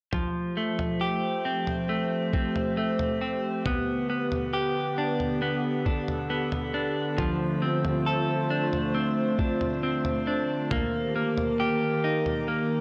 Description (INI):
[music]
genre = dream pop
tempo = 68 BPM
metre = 4/4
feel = straight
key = F lydian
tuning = A4 = 439 Hz
[part]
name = warbly tape-like pad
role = sustained chords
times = 0.1-12.8 s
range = D3 to C5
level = -31 LUFS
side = equal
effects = chorus, built-in reverb
[part]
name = clean electric guitar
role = arpeggios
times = 0.1-12.8 s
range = F3 to A4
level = -30 LUFS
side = equal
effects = subtle chorus, analog delay
[part]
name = lo-fi sampler-style drum kit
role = drums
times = 0.1-12.5 s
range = kick drum, toms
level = -35 LUFS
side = equal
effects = none
[sound]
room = light reverb, digital ambience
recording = dry, gritty hardware recording, transformer saturation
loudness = -27 LUFS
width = mono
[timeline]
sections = 0.1-12.8 A section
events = none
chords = 0.1 Fadd9; 3.7 G; 7.2 Dm7; 10.7 Eb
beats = | 0.13 1.01 1.89 2.77 | 3.66 4.54 5.42 6.30 | 7.19 8.07 8.95 9.83 | 10.71 11.60 12.48